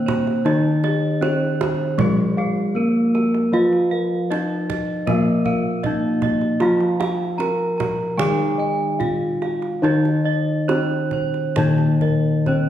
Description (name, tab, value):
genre	Javanese gamelan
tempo	77 BPM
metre	4/4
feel	uneven beats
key	unclear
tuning	A4 = 439 Hz
part	gamelan-type bronze metallophone	melody	0.0-12.7 s	Ab3-40c to Bb4	-23 LUFS	equal	none
part	gamelan-type bronze metallophone	accompaniment	0.0-12.7 s	Eb3-20c to Bb3	-23 LUFS	left 2 dB	none
part	gamelan-type bossed gongs	arpeggios	0.0-12.7 s	Ab4-40c to Bb5	-30 LUFS	left 3 dB	none
part	gamelan-type bronze metallophone	arpeggios	0.0-12.7 s	Ab4-40c to Bb5	-27 LUFS	right 4 dB	none
part	gamelan-type bossed gongs	bass	0.0-12.7 s	Bb2 to F4+20c	-25 LUFS	equal	none
part	kendang	percussion	0.1-12.7 s	none	-28 LUFS	right 4 dB	none
room	wet recital hall reverb, RT60 1.7 s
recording	heard from further back in the room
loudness	-18 LUFS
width	side -11 dB against mid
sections	0.0-12.7 A section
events	none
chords	none